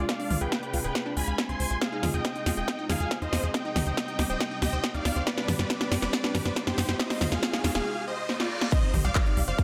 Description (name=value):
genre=uplifting trance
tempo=139 BPM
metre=4/4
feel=straight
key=C harmonic minor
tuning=A4 = 436 Hz
part: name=big supersaw lead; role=melody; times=0.0-9.6 s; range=F4 to C6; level=-35 LUFS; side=equal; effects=cassette tape, sidechain pumping, low-pass filter, dub echo
part: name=lush unison pad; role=sustained chords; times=0.0-9.6 s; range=C3 to G4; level=-40 LUFS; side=equal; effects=chorus, sidechain pumping
part: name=unison pluck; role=arpeggios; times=0.0-9.6 s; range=C4 to F5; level=-40 LUFS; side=equal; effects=cassette tape, sidechain pumping, dub echo
part: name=tight sequencer bass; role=bass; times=0.0-9.5 s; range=D1 to G2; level=-32 LUFS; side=equal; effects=sidechain pumping
part: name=big-room dance drum kit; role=drums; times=0.1-9.6 s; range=crash cymbal, handclaps, hi-hat, snare drum, toms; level=-32 LUFS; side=equal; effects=sidechain pumping on hats, sidechain pumping on toms, sidechain pumping on cymbals
part: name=electronic kick drum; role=drums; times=0.1-9.6 s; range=none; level=-30 LUFS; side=equal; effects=high-pass filter on kick, high-pass filter on room
part: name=riser, reverse cymbal and impact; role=sound effects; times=5.0-9.6 s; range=none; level=-42 LUFS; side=equal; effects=none
part: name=unison pluck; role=second line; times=8.7-9.6 s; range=Eb5 to F5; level=-40 LUFS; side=equal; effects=sidechain pumping
room=moderate lush hall reverb, RT60 1.6 s, digital ambience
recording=none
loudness=-28 LUFS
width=mono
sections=0.0-8.7 A section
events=build-up 0.0-8.7; drum fill 0.0-7.9, 8.3-8.7; reverse cymbal 7.9-8.7; impact 8.7-9.6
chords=0.0 Dm7b5; 1.8 Fm7; 3.5 Cm/Eb; 5.3 Gsus4; 7.0 Fm7; 8.7 Cm